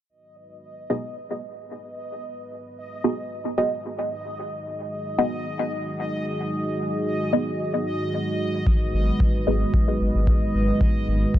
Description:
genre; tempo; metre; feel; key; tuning
dub techno; 112 BPM; 4/4; swing 54% on 16ths; G# minor; A4 = 439 Hz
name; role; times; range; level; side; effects
dark analog pad; sustained chords; 0.1-11.4 s; G#3 to B4; -28 LUFS; right 1 dB; chorus, sidechain pumping
bubbling stepped-filter texture; texture; 0.3-11.4 s; D#5; -34 LUFS; equal; chorus, built-in reverb, sidechain pumping
filtered dub chord stab; stabs; 0.9-9.7 s; B3 to D#5; -27 LUFS; equal; phaser, sidechain pumping, dub echo
electronic kick drum; drums; 8.7-11.4 s; none; -21 LUFS; equal; none
soft dub sub bass; bass; 8.9-11.3 s; G#1; -23 LUFS; equal; transformer saturation, sidechain pumping
room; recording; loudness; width
digital ambience; dry, gritty hardware recording, nothing above 11.0 kHz; -22 LUFS; side -13 dB against mid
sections
0.1-11.4 A section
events
filter sweep on synth stab 0.1-11.4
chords
0.1 G#m7

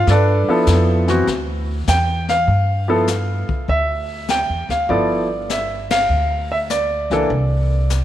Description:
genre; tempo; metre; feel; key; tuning
jazz piano trio; 100 BPM; 4/4; swing 68% on 8ths; G mixolydian; A4 = 440 Hz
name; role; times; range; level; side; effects
warm concert grand piano; melody; 0.0-8.0 s; E3 to G5; -18 LUFS; equal; none
upright bass; bass; 0.0-8.0 s; G1 to G2; -19 LUFS; equal; none
jazz brush drum kit; drums; 0.1-8.0 s; brushed snare drum, hi-hat, kick drum, ride cymbal, snare drum; -27 LUFS; left 5 dB; none
room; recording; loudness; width
moderate echo chamber reverb, RT60 2.7 s; 1960s-style stereo; -16 LUFS; side -12 dB against mid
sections
0.0-2.5 A section; 2.5-8.0 B section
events
grand piano solo 0.0-2.5; band accent 5.8-6.1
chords
0.1 G13; 1.3 Dsus2; 2.5 G7(no3); 7.3 Csus2

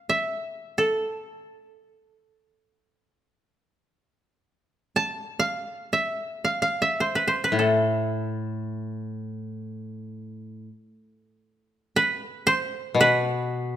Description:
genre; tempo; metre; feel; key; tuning
japanese traditional, Japanese chamber music; free time; none; none; A hirajoshi; A4 = 440 Hz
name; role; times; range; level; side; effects
koto; melody; 0.0-13.8 s; A4 to A5; -23 LUFS; right 1 dB; none
koto; accompaniment; 7.5-13.8 s; A2 to B2; -25 LUFS; left 2 dB; none
room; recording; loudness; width
moderate recital hall reverb, RT60 1.7 s; none; -23 LUFS; side -11 dB against mid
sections
0.0-4.0 A section; 4.0-13.8 A section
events
none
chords
none

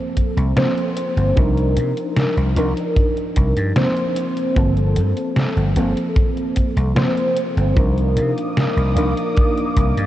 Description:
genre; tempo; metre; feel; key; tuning
vaporwave; 75 BPM; 4/4; straight; C dorian; A4 = 439 Hz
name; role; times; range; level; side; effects
mellow FM electric piano; accompaniment; 0.0-10.1 s; F3 to C5; -20 LUFS; equal; ensemble chorus, tape echo
detuned 8-bit digital drum machine; drums; 0.2-10.1 s; hi-hat, snare drum; -23 LUFS; equal; vintage 12-bit sampler grit
kick drum; drums; 0.2-9.9 s; none; -18 LUFS; equal; vintage 12-bit sampler grit
vintage slap bass; bass; 0.4-10.1 s; G1 to C3; -18 LUFS; equal; none
lush unison pad; sustained chords; 8.0-10.1 s; Bb3 to Eb6; -26 LUFS; left 1 dB; chorus, phaser
room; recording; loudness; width
moderate huge ambient reverb, RT60 5.2 s; dreamy mix soaked in reverb, cassette tape; -16 LUFS; side -13 dB against mid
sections
0.0-10.1 A section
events
none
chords
0.0 Gm11 (rootless); 1.4 Cm11; 4.2 Gm11; 7.8 Cm11

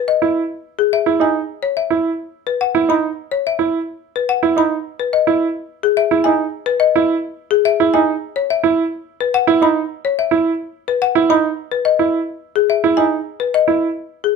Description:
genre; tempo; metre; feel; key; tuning
classical, minimalist pattern music; 107 BPM; 3/4; straight; unclear; A4 = 439 Hz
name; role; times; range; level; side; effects
folk marimba with hard mallets; melody; 0.0-14.4 s; G#4 to B5; -17 LUFS; left 10 dB; none
bright grand piano; arpeggios; 0.2-13.9 s; D#4 to E4; -15 LUFS; right 6 dB; none
room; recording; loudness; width
moderate large studio reverb, RT60 0.9 s; minimal, uncompressed stereo recording; -15 LUFS; side -5 dB against mid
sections
0.0-14.4 A section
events
none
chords
0.0 Emaj7

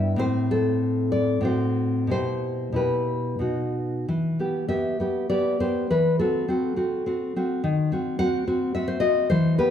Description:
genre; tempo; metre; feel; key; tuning
romantic piece for solo classical guitar; 88-109 BPM; 3/4; rubato; E minor; A4 = 436 Hz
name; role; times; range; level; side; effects
nylon-string guitar; solo; 0.0-9.7 s; G2 to F#5; -22 LUFS; left 1 dB; none
room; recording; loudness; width
wet recital hall reverb, RT60 1.7 s; recorded in a church or concert hall; -22 LUFS; side -9 dB against mid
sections
0.0-4.1 A section; 4.1-9.7 B section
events
none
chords
0.2 Am; 1.4 F#dim/A; 2.1 Em/B; 3.4 B; 4.1 Em; 5.9 F#m7b5/E; 7.6 D#m6

